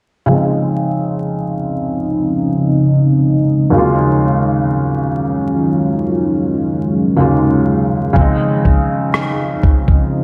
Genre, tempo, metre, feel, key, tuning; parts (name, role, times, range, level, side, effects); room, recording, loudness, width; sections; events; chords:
contemporary R&B; 61 BPM; 4/4; straight; A4 = 438 Hz
felt-muted upright piano; accompaniment; 0.3-10.2 s; Eb2 to F4; -19 LUFS; equal; subtle chorus, low-pass filter
deep dark ambient pad; sustained chords; 1.3-10.2 s; Db3 to F4; -18 LUFS; equal; chorus, built-in reverb, low-pass filter
dusty soul sampler-style drum kit; drums; 8.2-10.1 s; kick drum, rim click; -15 LUFS; equal
wet lush hall reverb, RT60 2.2 s; dreamy mix soaked in reverb, vinyl crackle; -15 LUFS; mono
0.3-10.2 A section
filter sweep 0.3-10.2
0.3 Dbmaj9; 3.7 Ebm11; 8.2 Dbmaj9